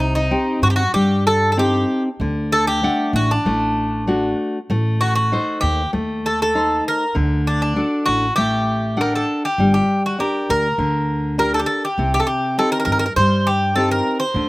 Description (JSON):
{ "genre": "greek folk, Greek bouzouki band", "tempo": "99 BPM", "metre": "4/4", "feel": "uneven beats", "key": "G harmonic minor", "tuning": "A4 = 441 Hz", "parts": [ { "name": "Greek bouzouki", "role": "melody", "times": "0.0-14.5 s", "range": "D4 to C5", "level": "-19 LUFS", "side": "equal", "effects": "none" }, { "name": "nylon-string guitar", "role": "accompaniment", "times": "0.0-14.5 s", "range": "C3 to F#5", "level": "-21 LUFS", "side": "left 1 dB", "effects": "slapback echo" }, { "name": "upright bass", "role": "bass", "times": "0.0-14.5 s", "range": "G1 to G2", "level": "-22 LUFS", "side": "equal", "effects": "none" } ], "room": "little or no reverb", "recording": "recorded outdoors, with no room sound", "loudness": "-16 LUFS", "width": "side -20 dB against mid", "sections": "0.0-9.6 A section; 9.6-14.5 B section", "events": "speeding up 0.0-14.5", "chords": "0.0 Cm; 2.2 D; 4.7 Adim; 7.2 D; 9.6 Gm; 12.0 Cm" }